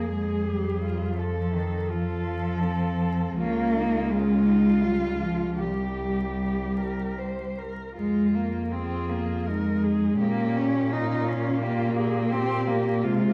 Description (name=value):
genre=classical, lyrical piece for cello ensemble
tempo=75-87 BPM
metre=3/4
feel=rubato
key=F minor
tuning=A4 = 440 Hz
part: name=warm cello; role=melody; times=0.0-13.3 s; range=C4 to Bb4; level=-36 LUFS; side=equal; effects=none
part: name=warm cello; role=second line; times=0.0-13.3 s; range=Db4 to C5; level=-36 LUFS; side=equal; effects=none
part: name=rich cello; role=accompaniment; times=0.0-13.3 s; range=Eb3 to Eb4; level=-28 LUFS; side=equal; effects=none
part: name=rich cello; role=bass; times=0.0-13.3 s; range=C2 to C3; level=-32 LUFS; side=equal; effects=none
room=wet recital hall reverb, RT60 1.5 s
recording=dark, warm production, vinyl crackle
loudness=-26 LUFS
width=mono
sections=0.0-13.3 A section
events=none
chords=0.0 Fm; 1.2 F; 3.4 Bbm/Db; 4.8 Db; 5.6 C5; 8.0 Fm; 10.2 Bbm; 12.3 Gmadd11/Bb